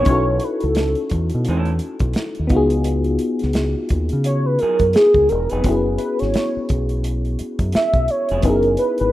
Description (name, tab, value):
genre	R&B, neo-soul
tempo	86 BPM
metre	4/4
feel	swing 59% on 16ths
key	unclear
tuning	A4 = 440 Hz
part	warm velvety synth lead	melody	0.0-9.1 s	G#4 to E5	-18 LUFS	right 1 dB	chorus
part	electric guitar through a small old amp	second line	0.0-8.4 s	F#3 to A4	-31 LUFS	right 4 dB	none
part	mellow FM electric piano	accompaniment	0.0-9.1 s	B3 to A4	-22 LUFS	left 2 dB	chorus
part	deep dub fingered electric bass	bass	0.0-9.1 s	E1 to C#3	-21 LUFS	equal	none
part	warm soul drum kit	drums	0.1-9.1 s	hi-hat, kick drum, snare drum	-23 LUFS	equal	none
room	light reverb, studio reverb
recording	rough home demo mix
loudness	-16 LUFS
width	side -15 dB against mid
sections	0.0-9.1 A section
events	soft synth lead solo 0.0-9.1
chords	0.1 B9sus4; 2.5 C#9sus4; 5.6 F#9sus4